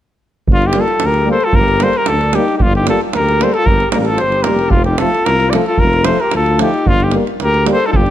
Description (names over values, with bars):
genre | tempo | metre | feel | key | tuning
balkan folk, Balkan brass band | 112 BPM | 2/4 | straight | G minor | A4 = 440 Hz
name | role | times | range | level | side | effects
warm trumpet | melody | 0.5-8.1 s | F4 to D5 | -15 LUFS | equal | none
mellow alto saxophone | second line | 0.5-8.1 s | C4 to Bb4 | -21 LUFS | left 6 dB | none
mellow tuba | bass | 0.5-8.1 s | F1 to D2 | -18 LUFS | equal | none
davul | percussion | 0.5-8.1 s | none | -18 LUFS | right 2 dB | none
clear euphonium | accompaniment | 0.7-7.8 s | A3 to Bb3 | -23 LUFS | left 6 dB | none
clear trombone | accompaniment | 0.7-7.8 s | F3 to G3 | -23 LUFS | right 6 dB | none
room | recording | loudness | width
light reverb | close, detailed microphones | -11 LUFS | side -12 dB against mid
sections
0.5-8.1 A section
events
none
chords
0.5 Gm; 4.7 F; 6.9 Gm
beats
| 0.47 1.00 | 1.53 2.06 | 2.60 3.13 | 3.66 4.20 | 4.73 5.27 | 5.80 6.34 | 6.88 7.41 | 7.95